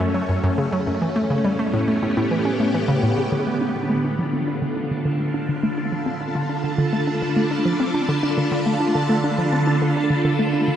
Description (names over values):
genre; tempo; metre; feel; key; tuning
ambient, sequencer-driven space music; 104 BPM; 4/4; straight; D dorian from 3.3 s; A4 = 440 Hz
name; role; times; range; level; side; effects
phased string machine; sustained chords; 0.0-10.8 s; A2 to A5; -21 LUFS; equal; ensemble chorus, phaser
hollow square pluck; riff; 0.0-10.8 s; F#2 to D4; -22 LUFS; equal; chorus, tape echo
wind-like tuned noise texture; texture; 5.0-10.8 s; B5; -38 LUFS; right 2 dB; built-in reverb
room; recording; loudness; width
wet huge ambient reverb, RT60 8.8 s; in a vast, echoing space, nothing above 10.5 kHz; -19 LUFS; side -10 dB against mid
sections
0.0-3.3 A section; 3.3-10.8 B section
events
fade-in on synth texture 3.3-10.8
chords
0.0 F#m; 1.0 A7; 3.3 Dm